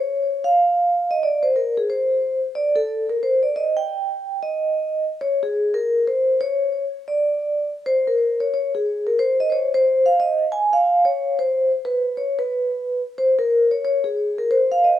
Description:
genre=jazz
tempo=180 BPM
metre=4/4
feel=swing 62% on 8ths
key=Bb minor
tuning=A4 = 441 Hz
part: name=vibraphone with soft mallets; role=solo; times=0.0-15.0 s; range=Ab4 to Ab5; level=-18 LUFS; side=equal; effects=slapback echo
room=little or no reverb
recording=recorded outdoors, with no room sound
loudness=-18 LUFS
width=side -12 dB against mid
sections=0.0-7.8 A section; 7.8-15.0 B section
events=none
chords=none

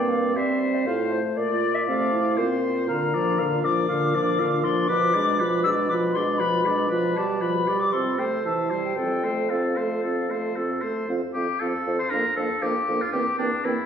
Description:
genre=quick classical-period movement for wind quintet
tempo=118 BPM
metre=4/4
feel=rubato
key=F major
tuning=A4 = 440 Hz
part: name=silver concert flute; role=melody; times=0.0-13.7 s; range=C5 to E6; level=-28 LUFS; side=left 4 dB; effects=none
part: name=clear oboe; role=second line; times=0.0-13.9 s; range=D4 to F5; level=-28 LUFS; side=left 2 dB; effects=none
part: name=mellow French horn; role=accompaniment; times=0.0-13.8 s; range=D3 to C4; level=-28 LUFS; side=equal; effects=none
part: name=mellow clarinet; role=accompaniment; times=0.0-13.8 s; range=C4 to A4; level=-30 LUFS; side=right 7 dB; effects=none
part: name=dark bassoon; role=bass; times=0.0-13.8 s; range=E2 to G3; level=-27 LUFS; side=equal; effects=none
room=wet recital hall reverb, RT60 1.6 s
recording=recorded in a church or concert hall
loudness=-21 LUFS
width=side -8 dB against mid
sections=0.0-11.1 A section; 11.1-13.9 B section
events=none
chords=0.0 C5/G; 0.9 F/A; 2.9 Bb; 4.9 Bdim7; 6.9 G7/B; 7.9 F/C; 8.4 C; 9.0 F; 11.1 F5; 12.1 Bb/F; 13.1 C7/E

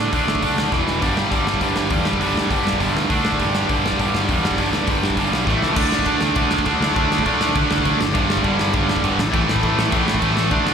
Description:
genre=punk rock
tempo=202 BPM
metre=4/4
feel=straight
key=unclear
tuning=A4 = 440 Hz
part: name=tight distorted guitar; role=riff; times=0.0-10.7 s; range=E2 to D4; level=-24 LUFS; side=left 14 dB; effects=distortion, slapback echo
part: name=tight distorted guitar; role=riff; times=0.0-10.7 s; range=E2 to D4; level=-21 LUFS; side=right 9 dB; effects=distortion, slapback echo
part: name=growling picked electric bass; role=bass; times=0.0-10.7 s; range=E1 to D3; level=-25 LUFS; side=left 1 dB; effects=overdrive
part: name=big rock drum kit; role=drums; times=0.1-10.7 s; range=crash cymbal, hi-hat, kick drum, snare drum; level=-23 LUFS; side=left 1 dB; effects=none
part: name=heavy high-gain guitar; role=riff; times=1.0-10.7 s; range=G2 to D4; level=-26 LUFS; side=left 3 dB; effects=distortion
room=small room ambience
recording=live gig heard through the venue's PA, recital hall reverb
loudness=-16 LUFS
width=side -7 dB against mid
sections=0.0-5.8 A section; 5.8-10.7 B section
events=drum fill 0.7, 5.5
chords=0.0 D5; 0.7 E5; 1.0 G5; 3.1 D5; 3.4 G5; 5.5 A5; 5.8 D5; 8.0 G5; 9.2 A5

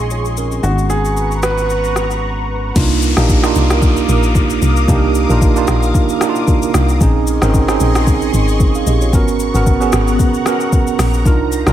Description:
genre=amapiano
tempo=113 BPM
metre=4/4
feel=swing 55% on 16ths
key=unclear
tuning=A4 = 440 Hz
part: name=tine electric piano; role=accompaniment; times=0.0-11.7 s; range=Ab3 to F5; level=-17 LUFS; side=right 5 dB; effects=auto-pan
part: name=lush unison pad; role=sustained chords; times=0.0-11.7 s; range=Cb4 to Eb6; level=-23 LUFS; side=equal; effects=chorus, phaser, sidechain pumping, low-pass filter
part: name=plucky analog bass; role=bass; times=0.0-2.7 s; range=Ab1 to Bb1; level=-19 LUFS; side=left 1 dB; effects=none
part: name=smooth R&B drum kit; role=drums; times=0.1-11.7 s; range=crash cymbal, hi-hat, kick drum, rim click, shaker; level=-16 LUFS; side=left 1 dB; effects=none
part: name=warm grand piano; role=melody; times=0.6-2.2 s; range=Gb4 to Cb5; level=-20 LUFS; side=right 1 dB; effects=low-pass filter, digital delay
part: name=deep log drum bass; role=bass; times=2.8-11.7 s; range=Ab1 to C2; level=-15 LUFS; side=left 1 dB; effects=none
part: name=downlifter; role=sound effects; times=2.8-7.0 s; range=none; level=-26 LUFS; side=left 2 dB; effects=none
room=digital ambience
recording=none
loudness=-12 LUFS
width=side -11 dB against mid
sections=0.0-2.8 A section; 2.8-11.7 B section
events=break 2.2-2.8; drop 2.8-11.7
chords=0.0 Bbm11; 0.6 Abm11; 2.8 Cm11; 7.0 Bbm11; 9.1 Abm11

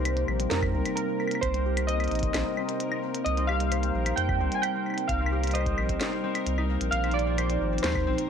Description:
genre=IDM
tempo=131 BPM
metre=4/4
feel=straight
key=C minor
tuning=A4 = 440 Hz
part: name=warbly lo-fi synth keys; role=melody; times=0.0-8.3 s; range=Bb4 to Ab5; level=-31 LUFS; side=right 2 dB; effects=chorus, ping-pong delay
part: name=warbly tape-like pad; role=sustained chords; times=0.0-8.3 s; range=Bb2 to C5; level=-32 LUFS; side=right 1 dB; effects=chorus, built-in reverb, sidechain pumping
part: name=concert harp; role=arpeggios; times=0.0-8.3 s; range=Bb3 to C5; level=-34 LUFS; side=left 6 dB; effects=low-pass filter, ping-pong delay
part: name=warm sub bass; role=bass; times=0.0-8.2 s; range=Ab1 to F2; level=-28 LUFS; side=equal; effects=none
part: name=bubbling stepped-filter texture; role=texture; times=0.0-8.3 s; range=Bb4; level=-41 LUFS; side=left 4 dB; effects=chorus, built-in reverb
part: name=glitchy drum kit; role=drums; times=0.1-8.3 s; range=claves, hi-hat, snare drum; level=-33 LUFS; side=left 1 dB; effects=none
part: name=electronic kick drum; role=drums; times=0.6-8.0 s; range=none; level=-34 LUFS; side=equal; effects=overdrive
room=light reverb, digital ambience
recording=none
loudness=-25 LUFS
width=side -7 dB against mid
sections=0.0-8.3 A section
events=filter sweep on harp 0.0-8.3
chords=0.0 Cm7; 6.9 Bb9sus4

